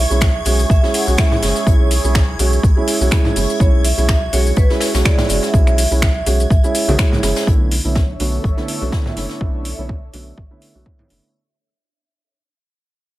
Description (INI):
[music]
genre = deep house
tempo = 124 BPM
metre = 4/4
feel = swing 54% on 16ths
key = B dorian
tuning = A4 = 440 Hz
[part]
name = vibraphone with medium mallets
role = melody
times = 0.0-7.2 s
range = B4 to F#5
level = -24 LUFS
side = right 2 dB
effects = tape echo
[part]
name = warbly tape-like pad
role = sustained chords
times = 0.0-7.4 s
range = E4 to C#6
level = -29 LUFS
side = equal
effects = chorus, built-in reverb, sidechain pumping
[part]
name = round analog bass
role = bass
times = 0.0-11.2 s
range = F#1 to B1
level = -18 LUFS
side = equal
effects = sidechain pumping
[part]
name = string machine, violins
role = texture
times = 0.0-7.5 s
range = G#6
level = -32 LUFS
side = left 1 dB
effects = ensemble chorus, sidechain pumping
[part]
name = felt-muted upright piano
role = stabs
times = 0.1-11.3 s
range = D3 to F#4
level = -21 LUFS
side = right 2 dB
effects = sidechain pumping
[part]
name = deep house drum kit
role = drums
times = 0.1-11.2 s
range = finger snaps, hi-hat, shaker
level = -23 LUFS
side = equal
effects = overdrive, small room ambience
[part]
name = jazz brush drum kit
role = drums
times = 0.1-9.4 s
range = hi-hat, snare drum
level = -30 LUFS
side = left 2 dB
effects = high-pass filter on hats, small room ambience, high-pass filter on snare, high-pass filter on room
[part]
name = electronic kick drum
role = drums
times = 0.2-11.0 s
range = none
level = -15 LUFS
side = equal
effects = overdrive, small room ambience
[part]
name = congas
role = percussion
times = 1.3-11.1 s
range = none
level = -23 LUFS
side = right 1 dB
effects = sidechain pumping on perc
[part]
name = airy breathy pad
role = texture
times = 7.5-11.3 s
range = D4 to E5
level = -32 LUFS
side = left 1 dB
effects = chorus, phaser, sidechain pumping
[sound]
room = small room ambience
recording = none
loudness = -13 LUFS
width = side -16 dB against mid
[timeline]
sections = 0.0-7.5 A section; 7.5-11.3 B section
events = drop 0.0-7.5; fade-out 7.5-11.3; filter sweep on analog synth bass 7.5-11.3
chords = 0.0 C#m; 7.5 Bm11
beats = 0.21 0.70 1.18 | 1.67 2.15 2.63 3.12 | 3.60 4.09 4.57 5.05 | 5.54 6.02 6.50 6.99 | 7.47 7.96 8.44 8.93 | 9.41 9.89 10.38 10.86